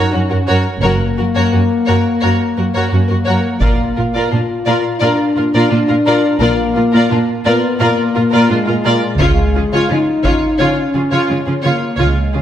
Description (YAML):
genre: cinematic, epic orchestral film score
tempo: 86 BPM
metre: 4/4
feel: straight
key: unclear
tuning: A4 = 441 Hz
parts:
  - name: rich symphonic violin section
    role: melody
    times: 0.0-12.4 s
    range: F4 to D5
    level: -22 LUFS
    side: left 1 dB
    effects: none
  - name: dark symphonic violin section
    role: second line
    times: 0.0-12.4 s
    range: Ab3 to Bb4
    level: -21 LUFS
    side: left 2 dB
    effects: none
  - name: clear symphonic viola section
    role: accompaniment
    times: 0.0-12.4 s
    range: F4 to Gb4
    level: -21 LUFS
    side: right 2 dB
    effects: none
  - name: mellow French horn section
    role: sustained chords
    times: 0.0-12.4 s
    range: Ab3 to F4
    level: -17 LUFS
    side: left 2 dB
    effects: none
  - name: warm symphonic cello section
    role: bass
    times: 0.0-12.4 s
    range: Gb2 to Db3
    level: -18 LUFS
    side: right 2 dB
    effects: none
  - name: warm symphonic double bass section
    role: bass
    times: 0.8-12.1 s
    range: Gb1 to Db2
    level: -19 LUFS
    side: right 2 dB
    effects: none
  - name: taiko ensemble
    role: drums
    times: 3.6-5.0, 9.2-10.6 s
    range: none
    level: -19 LUFS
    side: equal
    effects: none
room: wet scoring stage reverb, RT60 1.6 s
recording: none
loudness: -12 LUFS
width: side -10 dB against mid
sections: 0.0-12.4 A section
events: none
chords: 0.0 Gb; 3.6 Bb; 9.2 Db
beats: 0.13 | 0.82 1.52 2.22 2.92 | 3.62 4.31 5.01 5.71 | 6.41 7.10 7.80 8.50 | 9.20 9.89 10.59 11.29 | 11.99